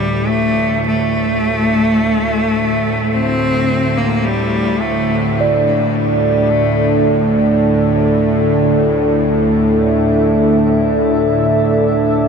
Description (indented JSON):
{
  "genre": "dark ambient drone",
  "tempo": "free time",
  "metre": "none",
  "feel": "none",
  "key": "unclear",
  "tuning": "A4 = 441 Hz",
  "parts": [
    { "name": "bright cello", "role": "melody", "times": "0.0-5.4 s", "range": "G3 to C4", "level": "-18 LUFS", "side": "left 1 dB", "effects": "shimmer reverb, ping-pong delay" },
    { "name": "dark concert grand piano", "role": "arpeggios", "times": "0.0-12.3 s", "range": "none", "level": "barely audible", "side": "none", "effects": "none" },
    { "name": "bowed-like drone", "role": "drone", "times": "0.0-12.3 s", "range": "D2 to A2", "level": "-15 LUFS", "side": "right 1 dB", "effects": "built-in reverb" },
    { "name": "dark analog pad", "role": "sustained chords", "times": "5.4-12.3 s", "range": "D4 to E5", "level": "-16 LUFS", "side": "left 1 dB", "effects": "chorus, shimmer reverb" },
    { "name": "bronze singing bowl", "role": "texture", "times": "5.4-12.3 s", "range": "D5", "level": "-20 LUFS", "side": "right 2 dB", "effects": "stereo widening, shimmer reverb" }
  ],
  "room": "wet huge ambient reverb, RT60 8.5 s",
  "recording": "none",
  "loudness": "-12 LUFS",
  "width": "side -6 dB against mid",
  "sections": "0.0-12.3 A section",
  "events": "none",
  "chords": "0.0 Dsus2",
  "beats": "free time"
}